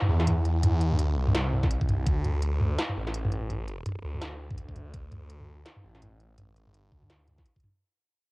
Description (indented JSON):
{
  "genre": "half-time drum and bass",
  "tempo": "167 BPM",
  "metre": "4/4",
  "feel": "swing 59% on 16ths, half-time",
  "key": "unclear",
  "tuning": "A4 = 440 Hz",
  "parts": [
    { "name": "industrial drum kit", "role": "drums", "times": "0.0-7.7 s", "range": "hi-hat, snare drum, toms", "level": "-29 LUFS", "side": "equal", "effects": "cassette tape" },
    { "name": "phased detuned saw bass", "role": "bass", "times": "0.1-7.4 s", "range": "A1 to E2", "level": "-28 LUFS", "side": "equal", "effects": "phaser, tube saturation" },
    { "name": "electronic kick drum", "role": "drums", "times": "1.6-2.1, 4.5-7.6 s", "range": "none", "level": "-28 LUFS", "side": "equal", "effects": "cassette tape" }
  ],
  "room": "little or no reverb",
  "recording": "home recording on cassette",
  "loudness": "-25 LUFS",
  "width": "side -24 dB against mid",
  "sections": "0.0-7.8 A section",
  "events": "fade-out 0.0-7.8",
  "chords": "none"
}